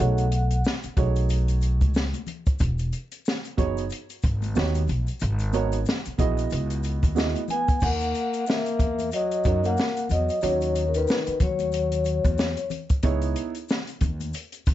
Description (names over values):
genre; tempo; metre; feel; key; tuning
hip hop, jazz-hop; 92 BPM; 4/4; swing 58% on 16ths; unclear; A4 = 438 Hz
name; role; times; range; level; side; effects
vibraphone with soft mallets; melody; 0.0-0.6, 7.5-12.7 s; A#4 to G#5; -27 LUFS; left 1 dB; plate reverb
mellow trombone; second line; 0.0-0.6, 7.5-12.7 s; C#3 to B3; -30 LUFS; left 6 dB; plate reverb
dark concert grand piano; accompaniment; 0.0-13.5 s; A3 to D#5; -29 LUFS; right 9 dB; none
upright bass; bass; 0.0-14.7 s; E1 to F#2; -25 LUFS; equal; none
open jazz drum kit; drums; 0.2-14.7 s; crash cymbal, hi-hat, kick drum, snare drum; -26 LUFS; equal; none
maracas and congas; percussion; 0.2-14.7 s; none; -39 LUFS; left 9 dB; none
room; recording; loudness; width
light reverb; vinyl crackle, nothing above 7.8 kHz; -22 LUFS; side -13 dB against mid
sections
0.0-7.8 A section; 7.8-14.7 B section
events
none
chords
0.0 B13; 2.6 Emaj13; 4.6 D#7alt; 5.2 G#m11; 6.5 C#m11; 7.8 D#m7; 13.0 C#m7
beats
0.64 1.30 1.95 | 2.60 3.25 3.90 4.56 | 5.21 5.86 6.51 7.17 | 7.82 8.47 9.12 9.78 | 10.43 11.08 11.73 12.38 | 13.04 13.69 14.34